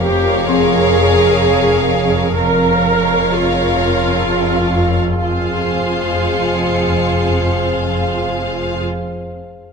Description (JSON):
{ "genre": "cinematic, suspense film score", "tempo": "63 BPM", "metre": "3/4", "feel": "straight", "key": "F minor", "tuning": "A4 = 441 Hz", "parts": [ { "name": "rich symphonic violin section", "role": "melody", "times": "0.0-8.8 s", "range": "F5", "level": "-24 LUFS", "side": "left 2 dB", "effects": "none" }, { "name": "rich studio violin section", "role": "second line", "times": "0.0-8.8 s", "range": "Ab4 to Db5", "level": "-21 LUFS", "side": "left 1 dB", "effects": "none" }, { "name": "rich studio viola section", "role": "accompaniment", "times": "0.0-8.8 s", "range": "F4 to Bb4", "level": "-17 LUFS", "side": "right 1 dB", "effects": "none" }, { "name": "glass harmonica", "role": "sustained chords", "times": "0.0-8.8 s", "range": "Ab4 to F5", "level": "-25 LUFS", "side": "left 1 dB", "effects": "none" }, { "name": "clear studio cello section", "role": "bass", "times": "0.0-8.8 s", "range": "F2", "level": "-23 LUFS", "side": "equal", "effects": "none" }, { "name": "rich studio double bass section", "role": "bass", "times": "0.0-8.8 s", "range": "F1", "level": "-24 LUFS", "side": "right 4 dB", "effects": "none" }, { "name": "swarming drone", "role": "drone", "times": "0.0-8.8 s", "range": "F2", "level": "-22 LUFS", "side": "equal", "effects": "built-in reverb" }, { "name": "worn celesta", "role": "texture", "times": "0.5-5.3 s", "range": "C4 to C6", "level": "-25 LUFS", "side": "left 8 dB", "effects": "none" }, { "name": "rich symphonic violin section", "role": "texture", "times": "5.2-7.6 s", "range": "C7 to Db7", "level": "-29 LUFS", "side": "left 1 dB", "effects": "none" } ], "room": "moderate scoring stage reverb, RT60 2.0 s", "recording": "close, detailed microphones", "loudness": "-13 LUFS", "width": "side -5 dB against mid", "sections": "0.0-5.2 A section; 5.2-8.1 B section", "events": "none", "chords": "0.0 Bbm7/F; 5.2 Fm", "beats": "0.47 1.42 | 2.37 3.33 4.28 | 5.23 6.18 7.14" }